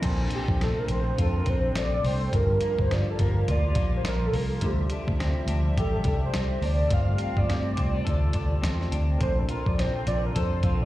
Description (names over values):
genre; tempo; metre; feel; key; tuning
indie pop, bedroom pop; 105 BPM; 4/4; swing 60% on 16ths; unclear; A4 = 442 Hz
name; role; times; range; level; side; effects
electric guitar through a small old amp; accompaniment; 0.0-10.8 s; G2 to A4; -35 LUFS; left 2 dB; lush chorus, vibrato effect, slapback echo
soft electric-piano-like synth keys; accompaniment; 0.0-10.8 s; G3 to C5; -39 LUFS; right 1 dB; chorus, phaser, slapback echo
hollow soft pad; sustained chords; 0.0-10.8 s; C3 to E5; -36 LUFS; right 1 dB; ensemble chorus
vintage muted fingered electric bass; bass; 0.0-10.8 s; G1 to G2; -26 LUFS; equal; none
dusty soul sampler-style drum kit; drums; 0.0-10.8 s; crash cymbal, hi-hat, kick drum, snare drum; -29 LUFS; equal; none
warm velvety synth lead; melody; 0.3-10.8 s; G4 to F5; -30 LUFS; right 1 dB; wide subtle chorus, slapback echo
room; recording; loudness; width
little or no reverb; live gig heard through the venue's PA, recital hall reverb; -23 LUFS; side -15 dB against mid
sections
0.0-10.8 A section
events
soft synth lead solo 0.0-10.8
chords
0.0 Bbmaj9; 2.3 Gm7; 4.6 Dm11; 6.9 G9sus4; 9.2 Bbmaj9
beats
| 0.03 0.61 1.18 1.75 | 2.33 2.90 3.48 4.05 | 4.62 5.20 5.77 6.34 | 6.92 7.49 8.06 8.64 | 9.21 9.78 10.36